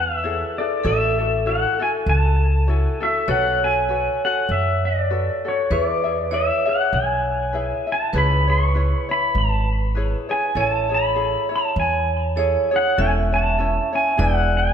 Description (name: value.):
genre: Hawaiian.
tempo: 99 BPM.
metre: 4/4.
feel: swing 56% on 8ths.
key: A major.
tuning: A4 = 442 Hz.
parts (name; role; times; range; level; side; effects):
pedal steel guitar; melody; 0.0-14.7 s; C#5 to C#6; -22 LUFS; left 2 dB; ping-pong delay.
vibraphone with medium hard mallets; second line; 0.0-14.7 s; A4 to E5; -25 LUFS; right 4 dB; none.
ukulele; accompaniment; 0.0-14.7 s; C#4 to E5; -28 LUFS; left 4 dB; none.
upright bass; bass; 0.0-14.7 s; E1 to F#2; -22 LUFS; equal; none.
room: moderate scoring stage reverb, RT60 1.9 s.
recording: none.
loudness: -18 LUFS.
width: side -8 dB against mid.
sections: 0.0-14.7 A section.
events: none.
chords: 0.0 Amaj7; 0.9 F#m7/A; 3.3 Bm7; 5.7 E; 8.1 C#m7; 10.6 Amaj7; 13.0 A/E; 14.2 E7.